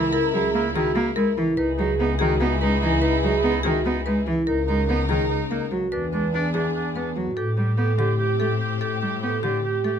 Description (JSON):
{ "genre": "classical, minimalist pattern music", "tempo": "290 BPM (eighths)", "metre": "7/8", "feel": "straight", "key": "unclear", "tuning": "A4 = 437 Hz", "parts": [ { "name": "warm oboe", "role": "second line", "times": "0.0-10.0 s", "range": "D4 to G4", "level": "-30 LUFS", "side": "right 5 dB", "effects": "none" }, { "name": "rich cello", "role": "accompaniment", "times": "0.0-10.0 s", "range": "D3 to D4", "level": "-26 LUFS", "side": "equal", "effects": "none" }, { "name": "clear symphonic string section", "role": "sustained chords", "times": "0.0-10.0 s", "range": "C4 to A#4", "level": "-32 LUFS", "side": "left 1 dB", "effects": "none" }, { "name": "vibraphone with soft mallets", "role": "arpeggios", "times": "0.0-9.9 s", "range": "E4 to B4", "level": "-26 LUFS", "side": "right 4 dB", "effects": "none" }, { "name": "warm symphonic double bass section", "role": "bass", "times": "0.0-10.0 s", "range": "C#2 to A2", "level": "-26 LUFS", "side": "left 1 dB", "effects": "none" }, { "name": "marimba with hard mallets", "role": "melody", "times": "0.1-10.0 s", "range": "G4 to B4", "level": "-29 LUFS", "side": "left 8 dB", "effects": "none" } ], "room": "light reverb", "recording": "close, detailed microphones", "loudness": "-20 LUFS", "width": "side -8 dB against mid", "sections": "0.0-7.4 A section; 7.4-10.0 B section", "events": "none", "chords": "0.0 F#9/C#; 1.6 Emaj9/C#; 4.5 Bmaj9/C# (rootless); 5.9 E7; 7.4 Am7", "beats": "| 0.12 0.33 0.54 0.74 0.95 1.16 1.37 | 1.57 1.78 1.99 2.19 2.40 2.61 2.81 | 3.02 3.23 3.44 3.64 3.85 4.06 4.26 | 4.47 4.68 4.88 5.09 5.30 5.50 5.71 | 5.92 6.12 6.33 6.54 6.75 6.95 7.16 | 7.37 7.57 7.78 7.99 8.19 8.40 8.61 | 8.81 9.02 9.23 9.44 9.64 9.85" }